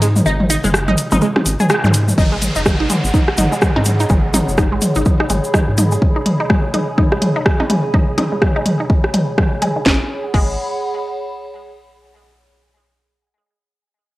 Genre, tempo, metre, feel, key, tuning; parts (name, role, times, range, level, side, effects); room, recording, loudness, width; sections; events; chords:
minimal techno; 125 BPM; 4/4; swing 59% on 16ths; G# minor; A4 = 440 Hz
resonant blip pluck; riff; 0.0-10.6 s; D#3 to G#4; -22 LUFS; equal; phaser, sidechain pumping, cassette tape, tape echo
rubbery square bass; bass; 0.0-6.0, 9.9-10.6 s; F#1 to G#2; -18 LUFS; equal; sidechain pumping
house drum kit; drums; 0.0-10.5 s; crash cymbal, hi-hat, rim click, snare drum; -19 LUFS; equal; overdrive, studio reverb, cassette tape
tube shaker; percussion; 0.0-6.0 s; -25 LUFS; left 1 dB
electronic toms and percussion blips; percussion; 0.2-9.7 s; -18 LUFS; equal; studio reverb, cassette tape
zap and downlifter; sound effects; 1.8-6.0 s; -28 LUFS; equal
electronic kick drum; drums; 2.2-10.5 s; -16 LUFS; equal; overdrive, studio reverb, cassette tape
warbly tape-like pad; texture; 2.2-11.7 s; G#4 to B5; -25 LUFS; right 2 dB; chorus, built-in reverb, sidechain pumping, cassette tape
moderate spring reverb, RT60 1.2 s; home recording on cassette, faint mains hum; -13 LUFS; side -18 dB against mid
0.0-2.2 A section; 2.2-9.9 B section; 9.9-11.8 C section
drop 0.0-2.2; kick drops out 0.3-2.2; band accent 1.7; filter sweep on synth arpeggio sound 2.2-9.9
0.0 N.C.; 2.2 G#m